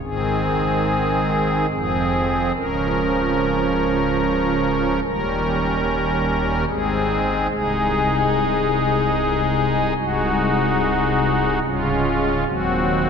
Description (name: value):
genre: classical, chorale-style piece for pipe organ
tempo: 72 BPM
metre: 3/4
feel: rubato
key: Ab major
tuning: A4 = 440 Hz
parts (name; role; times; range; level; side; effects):
- pipe organ, strings celeste; solo; 0.0-13.1 s; C1 to Bb4; -18 LUFS; equal; none
room: wet church reverb, RT60 3.6 s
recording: none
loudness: -18 LUFS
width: side -6 dB against mid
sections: 0.0-13.1 A section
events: none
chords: 0.0 Ab; 1.7 Fm; 2.5 Bbm/Db; 5.0 Eb7; 6.7 Ab; 7.5 Ab/C; 10.0 Ab7/C; 11.6 Db; 12.5 Cdim/Eb